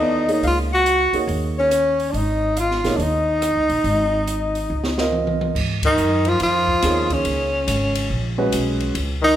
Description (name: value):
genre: modal jazz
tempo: 141 BPM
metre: 4/4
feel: swing 65% on 8ths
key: G# dorian from 5.5 s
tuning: A4 = 440 Hz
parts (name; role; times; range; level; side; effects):
- breathy tenor saxophone; melody; 0.0-9.4 s; Db4 to Gb4; -20 LUFS; right 1 dB; none
- warm alto saxophone; second line; 0.0-9.4 s; C#3 to Gb5; -25 LUFS; left 5 dB; none
- dark upright piano; accompaniment; 0.0-8.9 s; G#3 to Eb5; -24 LUFS; right 3 dB; none
- upright bass; bass; 0.0-9.4 s; Ab1 to G#2; -25 LUFS; equal; none
- open jazz drum kit; drums; 0.3-9.1 s; crash cymbal, hi-hat, kick drum, ride cymbal, rim click, snare drum, toms; -28 LUFS; equal; none
room: moderate recital hall reverb, RT60 1.5 s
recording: recorded in a church or concert hall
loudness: -17 LUFS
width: side -11 dB against mid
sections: 0.0-5.5 A section; 5.5-9.4 B section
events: drum fill 4.7-5.5; band accent 5.8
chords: 0.0 Absus4; 5.5 G#13sus4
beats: 0.01 | 0.43 0.86 1.28 1.71 | 2.14 2.56 2.99 3.42 | 3.85 4.27 4.70 5.12 | 5.55 5.97 6.40 6.83 | 7.25 7.68 8.10 8.53 | 8.95